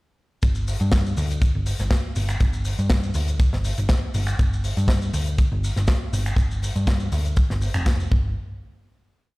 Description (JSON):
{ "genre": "nu-disco, nu disco", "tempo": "121 BPM", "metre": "4/4", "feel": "swing 53% on 16ths", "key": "unclear", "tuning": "A4 = 441 Hz", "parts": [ { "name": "hollow-body short-scale picked electric bass", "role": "bass", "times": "0.4-8.3 s", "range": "F1 to G2", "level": "-23 LUFS", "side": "equal", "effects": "none" }, { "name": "kick drum", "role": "drums", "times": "0.4-8.2 s", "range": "none", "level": "-20 LUFS", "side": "equal", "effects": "studio reverb" }, { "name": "tight funk drum kit", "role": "drums", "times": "0.4-8.1 s", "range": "finger snaps, hi-hat, shaker, snare drum", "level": "-30 LUFS", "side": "left 1 dB", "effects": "studio reverb" } ], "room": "little or no reverb", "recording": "played on a big sound system in a bare room, stone room reverb", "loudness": "-20 LUFS", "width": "side -23 dB against mid", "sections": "0.4-8.4 drop; 8.4-9.4 final hit", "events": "drop 0.4-8.4", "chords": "none" }